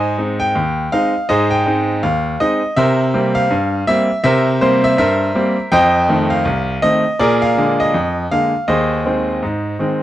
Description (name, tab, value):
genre	ragtime piano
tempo	81 BPM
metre	2/4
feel	swing 60% on 16ths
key	Ab major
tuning	A4 = 439 Hz
part	bright grand piano	solo	0.0-10.0 s	C2 to Ab5	-13 LUFS	equal	none
room	light reverb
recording	dark, warm production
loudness	-13 LUFS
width	side -13 dB against mid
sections	0.0-10.0 A section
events	none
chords	0.0 Ab; 2.8 C7; 5.7 F7; 7.2 Bb7; 8.7 Ab/Eb